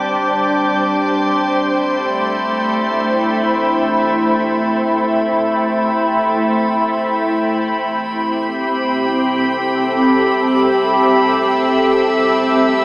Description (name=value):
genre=ambient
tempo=free time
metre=none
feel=none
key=A minor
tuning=A4 = 438 Hz
part: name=soft additive organ-like pad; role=sustained chords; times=0.0-12.8 s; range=G3 to G5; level=-14 LUFS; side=equal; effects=ensemble chorus, built-in reverb
part: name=drifting glass-harmonics texture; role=texture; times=0.0-12.8 s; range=B5 to D6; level=-21 LUFS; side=equal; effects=chorus, built-in reverb
room=wet cathedral reverb, RT60 6.2 s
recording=small speaker sound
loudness=-13 LUFS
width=side -22 dB against mid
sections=0.0-1.6 A section; 1.6-12.8 B section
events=none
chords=0.0 Gsus4; 1.6 Am7; 7.8 C6